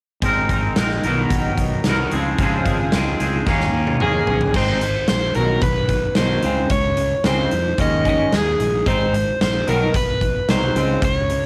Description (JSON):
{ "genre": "indie rock", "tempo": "111 BPM", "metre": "4/4", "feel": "straight", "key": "Ab major", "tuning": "A4 = 439 Hz", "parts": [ { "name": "twangy electric guitar", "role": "riff", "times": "0.2-11.5 s", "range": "B2 to Bb4", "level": "-24 LUFS", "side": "equal", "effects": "double-tracked, cassette tape" }, { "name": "fuzz fingered electric bass", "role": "bass", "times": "0.2-11.4 s", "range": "Ab1 to Ab2", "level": "-26 LUFS", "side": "equal", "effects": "overdrive" }, { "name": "big rock drum kit", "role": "drums", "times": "0.2-11.5 s", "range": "crash cymbal, hi-hat, kick drum, snare drum, toms", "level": "-24 LUFS", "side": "equal", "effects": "cassette tape" }, { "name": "overdriven semi-hollow guitar", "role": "melody", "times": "4.0-11.5 s", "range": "Ab4 to Eb5", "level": "-23 LUFS", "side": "equal", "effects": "cassette tape" } ], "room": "little or no reverb", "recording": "home recording on cassette", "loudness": "-19 LUFS", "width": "mono", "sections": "0.2-4.6 A section; 4.6-11.5 B section", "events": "drum fill 3.5-4.6", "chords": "0.2 Abadd9; 1.0 Bmaj7; 2.1 Dbmaj7; 3.5 Eb7sus4; 4.6 Abadd9; 5.4 B; 6.4 Dbmaj7; 7.8 Eb7sus4; 8.9 Abadd9; 9.7 B; 10.8 Dbmaj7(no3)" }